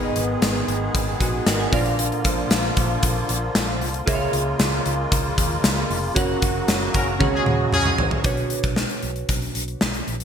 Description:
1980s-style pop; 115 BPM; 4/4; straight; A4 = 438 Hz
glassy digital keys; accompaniment; 0.0-10.2 s; G#2 to G#5; -26 LUFS; right 2 dB; chorus
musette accordion; sustained chords; 0.0-8.2 s; C#3 to G#4; -27 LUFS; left 1 dB
vintage muted fingered electric bass; bass; 0.0-10.2 s; E#1 to D#2; -28 LUFS; equal
gated 80s drum kit; drums; 0.2-10.2 s; hi-hat, kick drum, snare drum, tambourine, toms; -22 LUFS; equal; gated reverb
warm horn section; stabs; 6.9-7.9 s; C#4 to A#4; -26 LUFS; left 1 dB; digital delay
moderate lush hall reverb, RT60 2.2 s; bright 1980s-style digital production; -19 LUFS; side -8 dB against mid
0.0-8.2 A section; 8.2-10.2 B section
band accent 6.2-8.2; drum fill 7.2-8.2
0.0 G#m; 1.7 A#; 4.1 C#6; 6.2 F#; 7.2 C#sus4; 8.2 Bmadd9
0.42 0.94 1.47 | 1.99 2.51 3.03 3.55 | 4.07 4.60 5.12 5.64 | 6.16 6.68 7.20 7.73 | 8.25 8.77 9.29 9.81

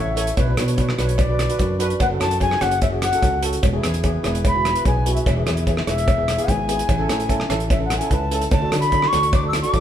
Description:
calypso; 148 BPM; 4/4; straight; A4 = 440 Hz
bright reedy bansuri; melody; 0.0-9.8 s; B4 to E6; -23 LUFS; left 2 dB
steel pan; accompaniment; 0.0-9.8 s; B3 to C#5; -25 LUFS; right 2 dB
fingered electric bass; bass; 0.0-9.8 s; E1 to D3; -23 LUFS; equal
damped 70s drum kit; drums; 0.2-9.8 s; hi-hat, kick drum, rim click; -22 LUFS; equal
cowbell; percussion; 0.4-9.8 s; -31 LUFS; right 2 dB
moderate large studio reverb, RT60 1.0 s; band playing live in one room; -17 LUFS; side -10 dB against mid
0.0-9.8 A section
bansuri solo 0.0-9.8
0.4 Bm; 2.0 F#madd9; 3.6 E; 6.9 A; 8.5 D
| 0.38 0.79 1.19 1.60 | 2.01 2.42 2.82 3.23 | 3.64 4.04 4.45 4.86 | 5.26 5.67 6.08 6.49 | 6.89 7.30 7.71 8.11 | 8.52 8.92 9.33 9.74

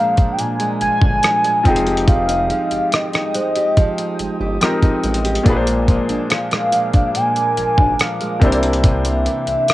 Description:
contemporary R&B; 71 BPM; 4/4; straight; F dorian; A4 = 441 Hz
warm velvety synth lead; melody; 0.0-9.7 s; D5 to Ab5; -18 LUFS; equal; chorus, cassette tape
bright concert grand piano; accompaniment; 0.0-9.7 s; Bb2 to C5; -22 LUFS; left 2 dB; cassette tape
deep dark ambient pad; sustained chords; 0.0-9.7 s; Ab3 to Eb6; -30 LUFS; right 2 dB; chorus, built-in reverb, sidechain pumping, cassette tape
fingerpicked steel-string acoustic guitar; arpeggios; 0.0-9.7 s; Bb2 to G4; -24 LUFS; right 3 dB; cassette tape
worn celesta; texture; 0.0-7.6 s; C5 to G6; -32 LUFS; equal
dusty soul sampler-style drum kit; drums; 0.2-9.7 s; hi-hat, kick drum, rim click; -16 LUFS; equal
smooth synth bass; bass; 0.8-9.6 s; F1 to C2; -23 LUFS; equal
light reverb, studio reverb; home recording on cassette; -14 LUFS; side -16 dB against mid
0.0-9.7 A section
0.0 Bb7; 1.7 Fm9; 5.5 Bb7; 8.4 C9
0.39 1.23 | 2.08 2.92 3.77 4.61 | 5.46 6.30 7.15 7.99 | 8.84 9.68

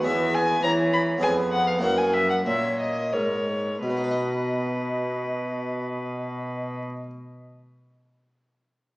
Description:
classical, baroque-style sonata movement with continuo; 83-107 BPM; 3/4; straight; B major; A4 = 444 Hz
mellow baroque flute; second line; 0.0-6.8 s; A#4 to D#5; -28 LUFS; right 1 dB
harpsichord; accompaniment; 0.0-7.1 s; E2 to D#5; -30 LUFS; equal
rich cello; bass; 0.0-6.8 s; E2 to E3; -29 LUFS; equal
warm violin; melody; 0.1-6.8 s; B4 to B5; -27 LUFS; left 1 dB
wet recital hall reverb, RT60 1.8 s; heard from further back in the room, small speaker sound; -22 LUFS; side -20 dB against mid
0.0-3.8 A section; 3.8-8.1 B section
slowing down 0.0-3.8
0.1 C#m7/E; 1.2 C#7/E#; 1.8 F#7; 3.8 B
| 0.06 0.63 1.22 | 1.82 2.45 3.12 | 3.83 4.53 5.23 | 5.94 6.65

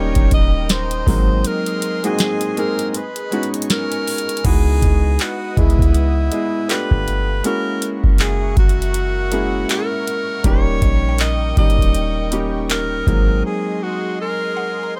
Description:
contemporary R&B; 80 BPM; 4/4; swing 58% on 16ths; C# dorian; A4 = 438 Hz
breathy alto saxophone; melody; 0.0-15.0 s; E4 to D#5; -26 LUFS; equal
felt-muted upright piano; accompaniment; 0.0-15.0 s; F#3 to D#5; -25 LUFS; equal
lush unison pad; sustained chords; 0.0-15.0 s; G#4 to D#6; -35 LUFS; equal; chorus, sidechain pumping
clean 808-style bass; bass; 0.0-13.4 s; D#1 to C#2; -21 LUFS; equal
mallet-like synth pluck; texture; 0.0-1.4, 10.8-15.0 s; D#5 to A#5; -38 LUFS; equal; chorus, phaser, digital delay
booming analog drum machine; drums; 0.2-13.3 s; crash cymbal, handclaps, hi-hat, kick drum, snare drum; -20 LUFS; equal
little or no reverb; -18 LUFS; mono
0.0-4.4 A section; 4.4-15.0 B section
break 1.4-4.4, 13.4-15.0
0.0 D#7; 1.1 G#7; 2.9 B69; 4.4 C#m11; 6.7 G9; 7.4 F#7; 10.4 D#7; 13.1 G#7
0.69 | 1.45 2.19 2.94 3.69 | 4.45 5.20 5.95 6.70 | 7.45 8.20 8.95 9.70 | 10.45 11.20 11.95 12.70 | 13.45 14.20 14.95

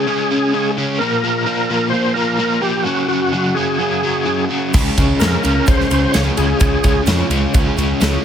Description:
classic rock; 128 BPM; 4/4; straight; A4 = 439 Hz
overdriven tonewheel organ; melody; 0.0-7.0 s; Gb4 to Db5; -20 LUFS; equal; slow rotary speaker, chorus vibrato
overdriven electric guitar; riff; 0.0-8.2 s; Gb2 to Db4; -18 LUFS; left 1 dB; tremolo
ensemble organ-string; sustained chords; 4.7-8.2 s; Db4 to Ab4; -26 LUFS; equal; phaser, ensemble chorus
fuzz picked electric bass; bass; 4.7-8.2 s; Db2 to F2; -18 LUFS; equal; overdrive
big rock drum kit; drums; 4.7-8.1 s; crash cymbal, kick drum, ride cymbal, snare drum; -17 LUFS; equal
egg shaker; percussion; 4.7-8.1 s; -35 LUFS; right 9 dB
light reverb, small room ambience; -14 LUFS; side -8 dB against mid
0.0-8.2 A section
0.0 Db5; 1.0 Bb5; 2.9 Gb5; 4.7 Db
0.05 0.52 | 0.98 1.45 1.92 2.39 | 2.86 3.33 3.79 4.26 | 4.73 5.20 5.67 6.14 | 6.61 7.07 7.54 8.01

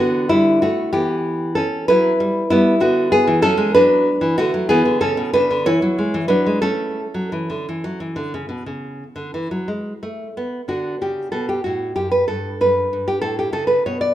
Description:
classical, baroque-style dance for nylon-string guitar; 59-65 BPM (dotted quarters); 12/8; rubato; A major, D major from 10.7 s; A4 = 440 Hz
nylon-string guitar; solo; 0.0-14.1 s; F#2 to D5; -16 LUFS; equal
moderate recital hall reverb, RT60 1.7 s; minimal, uncompressed stereo recording; -16 LUFS; side -12 dB against mid
0.0-10.7 A section; 10.7-14.1 A section
0.0 D; 0.9 Em; 2.8 Bm/D; 4.7 E; 10.7 D
0.93 1.88 | 2.82 3.75 4.69 5.66 | 6.65 7.66 8.67 9.68 | 10.69 11.66 12.62 13.56

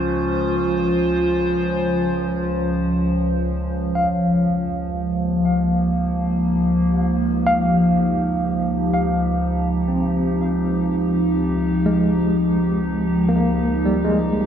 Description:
ambient; free time; Db lydian; A4 = 441 Hz
warbly tape-like pad; sustained chords; 0.0-14.5 s; Db2 to C5; -18 LUFS; equal; chorus, built-in reverb, phaser
overtone-sweeping drone; drone; 0.0-4.0 s; Db3 to Db4; -30 LUFS; equal; chorus, built-in reverb, phaser
tine electric piano; arpeggios; 4.0-14.5 s; G3 to F5; -24 LUFS; equal; medium tremolo, tape echo
wet concert hall reverb, RT60 2.3 s; dark, warm production; -18 LUFS; side -8 dB against mid
0.0-3.9 A section; 3.9-14.5 B section
0.0 N.C.; 3.9 Db6
free time

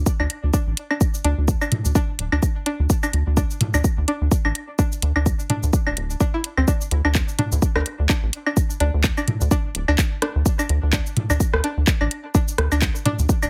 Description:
minimal techno; 127 BPM; 4/4; swing 57% on 16ths; A4 = 440 Hz
rubbery square bass; bass; 0.0-13.5 s; D1 to D2; -23 LUFS; equal; sidechain pumping
electronic kick drum; drums; 0.1-13.4 s; -22 LUFS; equal
house drum kit; drums; 0.1-13.5 s; cabasa, handclaps, hi-hat; -29 LUFS; equal
string-like resonator pluck; riff; 0.2-13.4 s; C4 to E4; -30 LUFS; equal; chorus, sidechain pumping, dub echo
minimal click drum kit; percussion; 0.2-13.5 s; claves, rim click, toms; -27 LUFS; equal
light reverb; heavily compressed radio sound, multiband compression; -21 LUFS; mono
0.0-13.5 A section
0.0 D5
0.06 0.54 | 1.01 1.48 1.95 2.43 | 2.90 3.37 3.84 4.32 | 4.79 5.26 5.73 6.21 | 6.68 7.15 7.62 8.10 | 8.57 9.04 9.51 9.98 | 10.46 10.93 11.40 11.87 | 12.35 12.82 13.29

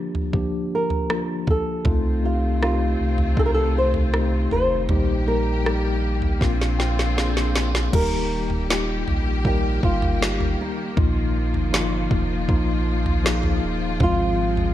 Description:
pop ballad; 79 BPM; 4/4; straight; Eb major; A4 = 440 Hz
flamenco guitar; melody; 0.0-14.7 s; D4 to C5; -26 LUFS; right 1 dB
mellow tine electric piano; accompaniment; 0.0-14.7 s; Ab2 to G5; -26 LUFS; left 2 dB; medium stereo tremolo
smooth R&B drum kit; drums; 0.1-14.7 s; crash cymbal, kick drum, rim click, snare drum, toms; -24 LUFS; right 1 dB
rich studio string section; sustained chords; 1.8-14.7 s; C3 to G4; -31 LUFS; left 1 dB
sub bass with octave; bass; 1.9-14.7 s; Eb1 to C2; -24 LUFS; equal
light reverb, digital ambience; dark, warm production; -19 LUFS; side -13 dB against mid
0.0-7.9 A section; 7.9-14.7 B section
drum fill 6.4-7.9; tine electric piano fill 6.4-7.9
0.0 Bb/D; 1.9 F7/C; 4.9 Eb/Bb; 6.4 Bbadd9; 7.9 Eb; 11.0 Bbsus4; 14.0 Fm/Ab
0.34 1.10 | 1.86 2.62 3.38 4.14 | 4.89 5.66 6.41 7.17 | 7.93 8.69 9.45 10.21 | 10.97 11.73 12.49 13.25 | 14.01

